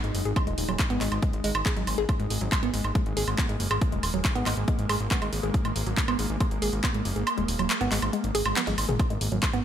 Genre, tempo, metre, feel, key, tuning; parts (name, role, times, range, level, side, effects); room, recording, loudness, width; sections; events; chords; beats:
psychedelic trance; 139 BPM; 4/4; straight; G# minor; A4 = 440 Hz
swarming drone; sustained chords; 0.0-9.6 s; G#3 to D#4; -34 LUFS; equal; built-in reverb, sidechain pumping
woody wave-folded pluck; riff; 0.0-9.6 s; F#3 to G#4; -32 LUFS; moving between left 5 dB and right 6 dB; chorus, auto-pan, sidechain pumping, ping-pong delay
fat analog bass; bass; 0.0-9.6 s; D#1 to G#1; -30 LUFS; equal; tube saturation
big-room dance drum kit; drums; 0.0-9.6 s; handclaps, hi-hat, snare drum, toms, woodblock; -30 LUFS; right 1 dB; overdrive, studio reverb
electronic kick drum; drums; 0.4-9.5 s; -27 LUFS; equal; overdrive, studio reverb
swell; sound effects; 8.3-9.0 s; -40 LUFS; right 1 dB
digital ambience; -24 LUFS; side -10 dB against mid
0.0-9.6 A section
kick drops out 7.3-9.0; drum fill 8.6-9.0
0.0 G#5
| 0.36 0.79 1.23 1.66 | 2.09 2.52 2.95 3.38 | 3.81 4.25 4.68 5.11 | 5.54 5.97 6.41 6.84 | 7.27 7.70 8.13 8.56 | 8.99 9.43